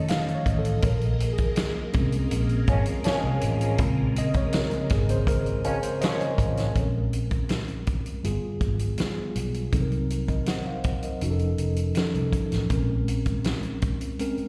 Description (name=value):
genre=lush 1970s-style soul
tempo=81 BPM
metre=4/4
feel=straight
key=Bb minor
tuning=A4 = 440 Hz
part: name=mellow tine electric piano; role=accompaniment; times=0.0-14.5 s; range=Db3 to Gb5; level=-31 LUFS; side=equal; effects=slapback echo
part: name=phased string machine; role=sustained chords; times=0.0-6.7 s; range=F3 to Eb5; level=-40 LUFS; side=equal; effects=ensemble chorus, phaser
part: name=vintage drum kit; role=drums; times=0.1-14.5 s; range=hi-hat, kick drum, snare drum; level=-30 LUFS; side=equal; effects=none
part: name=vintage muted fingered electric bass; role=bass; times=0.5-14.4 s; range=F1 to C2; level=-29 LUFS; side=equal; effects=none
part: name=muted trombone section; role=stabs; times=2.7-6.7 s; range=F3 to Db4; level=-32 LUFS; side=equal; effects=slapback echo
room=light reverb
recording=live gig heard through the venue's PA, recital hall reverb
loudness=-26 LUFS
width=mono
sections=0.0-6.8 A section; 6.8-14.5 B section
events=tine electric piano solo 0.0-6.8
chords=0.0 F7b13; 0.8 Bbm9; 8.2 G7b9; 9.7 Cm7b5; 11.2 F7b13; 12.7 Bbm9